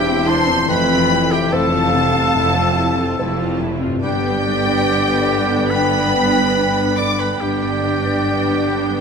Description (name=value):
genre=cinematic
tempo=71 BPM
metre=4/4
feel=rubato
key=unclear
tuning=A4 = 442 Hz
part: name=rich symphonic violin section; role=melody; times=0.0-9.0 s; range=G5 to D6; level=-23 LUFS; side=left 2 dB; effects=none
part: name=dark clarinet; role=second line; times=0.0-9.0 s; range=G4 to D5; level=-25 LUFS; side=right 2 dB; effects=none
part: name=large flute ensemble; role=second line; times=0.0-8.9 s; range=D5 to B5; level=-25 LUFS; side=equal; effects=none
part: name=rich symphonic violin section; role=second line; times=0.0-9.0 s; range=G5 to D6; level=-26 LUFS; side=left 1 dB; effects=none
part: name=warm oboe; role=second line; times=0.0-9.0 s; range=G4 to D5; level=-24 LUFS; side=right 1 dB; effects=none
part: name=clear symphonic viola section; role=accompaniment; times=0.0-9.0 s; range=A3 to F4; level=-27 LUFS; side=right 1 dB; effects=none
part: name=felt-muted upright piano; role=accompaniment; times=0.0-9.0 s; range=E2 to D5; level=-23 LUFS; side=left 2 dB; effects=none
part: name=dark French horn section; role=sustained chords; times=0.0-9.0 s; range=C3 to D4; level=-24 LUFS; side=left 2 dB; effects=none
part: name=concert harp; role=arpeggios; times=0.0-7.9 s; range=G2 to D5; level=-27 LUFS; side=left 7 dB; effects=none
part: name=rich symphonic cello section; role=bass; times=0.0-9.0 s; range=E2 to G2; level=-26 LUFS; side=right 4 dB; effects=none
part: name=rich symphonic double bass section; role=bass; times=0.0-9.0 s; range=E1 to G1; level=-26 LUFS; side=right 3 dB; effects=none
room=wet scoring stage reverb, RT60 1.7 s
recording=none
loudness=-14 LUFS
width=side -6 dB against mid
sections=0.0-9.0 A section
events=none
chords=0.0 Cadd9/E; 0.7 Fmaj7; 4.0 G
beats=| 0.69 1.52 2.35 3.19 | 4.02 4.86 5.70 6.55 | 7.40 8.24